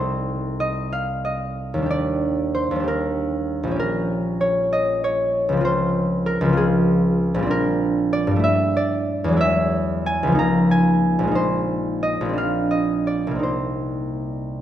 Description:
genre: classical, solo harp piece.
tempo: 55-66 BPM (dotted quarters).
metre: 6/8.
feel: rubato.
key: unclear.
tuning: A4 = 440 Hz.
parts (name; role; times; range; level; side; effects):
concert harp; solo; 0.0-14.6 s; Bb1 to Bb5; -19 LUFS; equal; none.
room: wet recital hall reverb, RT60 1.5 s.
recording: none.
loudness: -19 LUFS.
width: side -11 dB against mid.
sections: 0.0-14.6 A section.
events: none.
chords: 0.0 Cm6; 1.9 Ebmaj7; 3.8 Bbm6; 5.6 Dbmaj7; 7.5 Bb69; 8.4 Gsus2; 9.4 Eadd9; 10.4 Db69; 11.4 Bb9sus4; 12.4 Bbadd9; 13.4 Cm7.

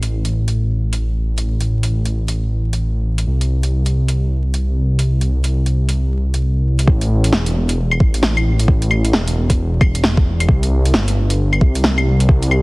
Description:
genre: future garage.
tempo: 133 BPM.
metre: 4/4.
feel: swing 62% on 16ths.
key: A minor.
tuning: A4 = 440 Hz.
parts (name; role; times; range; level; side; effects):
dark detuned saw bass; bass; 0.0-12.6 s; E1 to C2; -16 LUFS; equal; sidechain pumping.
garage drum kit; drums; 0.0-12.6 s; claves, hi-hat, snare drum; -20 LUFS; equal; overdrive.
electronic kick drum; drums; 6.9-12.4 s; none; -13 LUFS; equal; overdrive.
room: little or no reverb.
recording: heavily compressed radio sound, multiband compression, vinyl crackle.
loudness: -14 LUFS.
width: side -26 dB against mid.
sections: 0.0-6.9 A section; 6.9-12.6 B section.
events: none.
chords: none.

